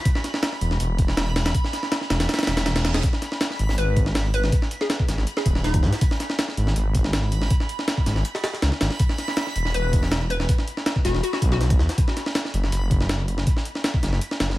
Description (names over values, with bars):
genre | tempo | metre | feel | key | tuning
drum and bass, jungle | 161 BPM | 4/4 | straight | G# minor | A4 = 438 Hz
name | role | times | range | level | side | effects
backwards swelling texture | texture | 0.0-14.6 s | B5 | -34 LUFS | right 2 dB | built-in reverb
breakbeat sampler-style drum kit | drums | 0.1-14.6 s | hi-hat, kick drum, snare drum | -22 LUFS | equal | studio reverb
detuned saw bass | bass | 0.6-14.6 s | D#1 to G#2 | -22 LUFS | equal | none
reverse cymbal | sound effects | 2.6-3.0 s | none | -36 LUFS | right 5 dB | none
hollow square pluck | melody | 3.8-6.0, 9.7-11.8 s | D#4 to B4 | -30 LUFS | left 2 dB | wide subtle chorus, dub echo
room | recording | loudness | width
little or no reverb | vinyl crackle | -20 LUFS | side -17 dB against mid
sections
0.0-14.6 A section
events
reverse cymbal 2.6-3.0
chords
0.0 E5; 3.0 G#m; 9.0 E5; 12.0 F#sus4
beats
| 0.05 0.43 0.80 1.17 | 1.54 1.92 2.29 2.66 | 3.04 3.41 3.78 4.15 | 4.53 4.90 5.27 5.64 | 6.02 6.39 6.76 7.13 | 7.51 7.88 8.25 8.62 | 9.00 9.37 9.74 10.12 | 10.49 10.86 11.23 11.61 | 11.98 12.35 12.72 13.10 | 13.47 13.84 14.21